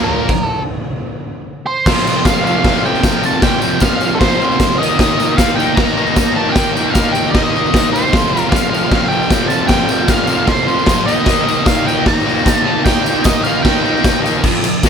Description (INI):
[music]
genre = garage rock duo or trio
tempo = 153 BPM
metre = 4/4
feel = straight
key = F mixolydian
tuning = A4 = 440 Hz
[part]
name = octave-fuzz lead guitar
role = melody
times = 0.0-14.2 s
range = A4 to Bb5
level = -18 LUFS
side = right 2 dB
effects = distortion
[part]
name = combo organ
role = sustained chords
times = 0.0-14.4 s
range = C4 to Eb5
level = -28 LUFS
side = left 2 dB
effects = none
[part]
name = thick fuzz guitar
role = riff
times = 0.0-14.9 s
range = F2 to Eb4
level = -16 LUFS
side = left 1 dB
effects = distortion
[part]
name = raw garage drum kit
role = drums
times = 0.1-14.9 s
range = crash cymbal, kick drum, ride cymbal, snare drum, toms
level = -15 LUFS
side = equal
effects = none
[part]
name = tambourine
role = percussion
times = 1.9-14.9 s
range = none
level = -30 LUFS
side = left 3 dB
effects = none
[sound]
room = little or no reverb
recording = none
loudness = -12 LUFS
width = side -7 dB against mid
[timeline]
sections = 0.0-1.9 A section; 1.9-14.4 B section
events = stop 0.3-1.9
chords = 0.0 Bb; 1.9 F; 4.8 Eb; 8.1 F; 11.1 Eb